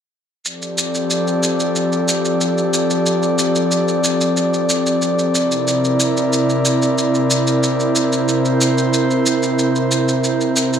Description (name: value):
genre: sunset chillout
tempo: 92 BPM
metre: 4/4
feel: straight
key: F major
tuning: A4 = 439 Hz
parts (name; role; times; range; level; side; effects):
- airy breathy pad; sustained chords; 0.4-10.8 s; C3 to D5; -16 LUFS; equal; chorus
- shaker; drums; 0.5-10.8 s; none; -22 LUFS; equal; none
room: wet spring reverb, RT60 2.5 s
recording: none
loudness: -15 LUFS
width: side -8 dB against mid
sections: 0.4-10.8 A section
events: none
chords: 0.4 F6; 5.3 C7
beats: | 0.45 1.10 1.75 2.40 | 3.06 3.71 4.36 5.01 | 5.66 6.32 6.97 7.62 | 8.27 8.93 9.58 10.23